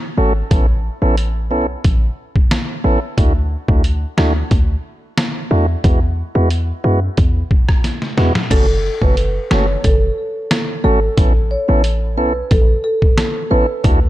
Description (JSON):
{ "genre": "dancehall", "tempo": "90 BPM", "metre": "4/4", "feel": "straight", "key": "unclear", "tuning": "A4 = 444 Hz", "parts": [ { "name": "tonewheel organ", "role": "accompaniment", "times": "0.2-14.0 s", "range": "G#3 to A4", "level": "-20 LUFS", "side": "right 1 dB", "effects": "stopped rotary speaker, sidechain pumping" }, { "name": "short 808-style bass", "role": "bass", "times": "0.2-14.1 s", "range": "F#1 to F#2", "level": "-16 LUFS", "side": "equal", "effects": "none" }, { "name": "trip hop sampler-style drum kit", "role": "drums", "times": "0.5-14.0 s", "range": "crash cymbal, hi-hat, kick drum, rim click, snare drum", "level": "-15 LUFS", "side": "equal", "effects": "none" }, { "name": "marimba with medium mallets", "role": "melody", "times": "8.5-13.6 s", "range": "A4 to C#5", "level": "-20 LUFS", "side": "right 1 dB", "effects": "ping-pong delay" } ], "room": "little or no reverb", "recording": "dark, warm production", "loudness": "-14 LUFS", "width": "side -15 dB against mid", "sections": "0.0-8.5 A section; 8.5-14.1 B section", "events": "drum fill 7.8-8.5", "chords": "0.0 F#m; 0.5 Aadd9; 3.2 Dadd9; 5.8 Eadd9; 8.5 F#m; 11.2 Aadd9" }